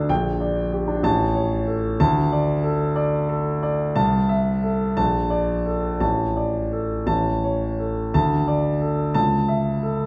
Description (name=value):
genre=classical, romantic character piece for solo piano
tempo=56-64 BPM (dotted quarters)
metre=6/8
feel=rubato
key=unclear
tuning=A4 = 444 Hz
part: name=warm concert grand piano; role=solo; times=0.0-10.1 s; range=A1 to A5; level=-22 LUFS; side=equal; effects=none
room=wet recital hall reverb, RT60 1.4 s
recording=none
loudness=-22 LUFS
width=mono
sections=0.0-8.1 A section; 8.1-10.1 B section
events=none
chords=0.1 Gm/Bb; 1.0 A; 2.0 D5; 4.0 Am/C; 5.0 Bbmaj7; 6.0 D5/A; 7.1 A; 8.1 D5; 9.1 A/C#